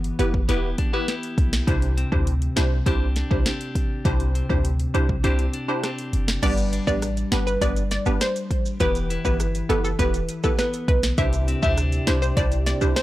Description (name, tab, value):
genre	dancehall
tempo	101 BPM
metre	4/4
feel	straight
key	unclear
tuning	A4 = 438 Hz
part	clean electric guitar	arpeggios	0.0-13.0 s	C3 to G4	-29 LUFS	left 2 dB	none
part	clean 808-style bass	bass	0.0-12.9 s	E1 to D2	-23 LUFS	equal	none
part	afro-pop drum kit	drums	0.0-13.0 s	crash cymbal, hi-hat, kick drum, rim click, snare drum	-25 LUFS	equal	none
part	wavetable chord stab	accompaniment	0.2-13.0 s	B3 to C5	-27 LUFS	equal	phaser
part	analog pluck	melody	6.4-13.0 s	A4 to E5	-26 LUFS	equal	chorus, tape echo
part	maracas	percussion	6.4-13.0 s	none	-40 LUFS	right 5 dB	none
part	warm French horn section	sustained chords	11.2-13.0 s	C3 to G4	-32 LUFS	right 1 dB	sidechain pumping
room	little or no reverb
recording	dry, gritty hardware recording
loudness	-20 LUFS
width	side -16 dB against mid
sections	0.0-6.4 A section; 6.4-13.0 B section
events	kick muted 5.2-6.4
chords	0.0 Em; 1.7 Cadd9; 6.4 G; 8.8 Em; 11.2 Cadd9